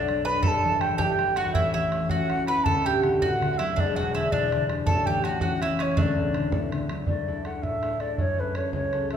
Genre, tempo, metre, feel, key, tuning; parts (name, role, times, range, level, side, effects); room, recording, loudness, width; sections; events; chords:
celtic folk, Celtic jig; 109 BPM (dotted quarters); 6/8; straight; D major; A4 = 440 Hz
mellow wooden flute; melody; 0.0-9.2 s; B4 to B5; -27 LUFS; equal
mandolin; second line; 0.0-6.7 s; C#4 to B4; -29 LUFS; right 4 dB
concert harp; accompaniment; 0.0-9.2 s; D1 to A4; -28 LUFS; left 3 dB
bodhran; percussion; 0.1-9.2 s; -30 LUFS; right 2 dB
wet recital hall reverb, RT60 1.4 s; recorded in a church or concert hall; -22 LUFS; side -8 dB against mid
0.0-7.1 A section; 7.1-9.2 B section
0.4 Em/G; 1.6 A; 2.7 D; 3.8 Em7; 4.9 A; 6.0 D; 7.1 Dsus2; 8.2 F#m